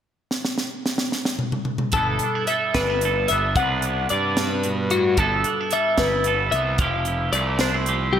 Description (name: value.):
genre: math rock and midwest emo.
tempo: 74 BPM (dotted quarters).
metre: 6/8.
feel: straight.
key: G major.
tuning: A4 = 437 Hz.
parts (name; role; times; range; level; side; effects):
crisp fusion drum kit; drums; 0.3-8.2 s; hi-hat, kick drum, snare drum, toms; -25 LUFS; right 1 dB; gated reverb.
twelve-string electric guitar; arpeggios; 1.9-8.2 s; F#4 to F#5; -23 LUFS; left 4 dB; analog chorus.
fuzz picked electric bass; bass; 1.9-8.2 s; F1 to G2; -25 LUFS; equal; overdrive.
twangy electric guitar; accompaniment; 2.0-8.2 s; G2 to D5; -24 LUFS; right 7 dB; lush chorus.
room: moderate lush hall reverb, RT60 1.9 s, studio reverb.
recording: bright 1980s-style digital production.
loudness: -20 LUFS.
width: side -9 dB against mid.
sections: 0.3-1.9 A section; 1.9-8.2 B section.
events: drum fill 0.3-1.9.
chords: 0.3 N.C.; 1.9 G69; 3.6 Csus2; 5.2 G69; 6.8 Fmaj9.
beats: | 0.32 1.14 | 1.95 2.76 | 3.57 4.38 | 5.18 5.99 | 6.80 7.61.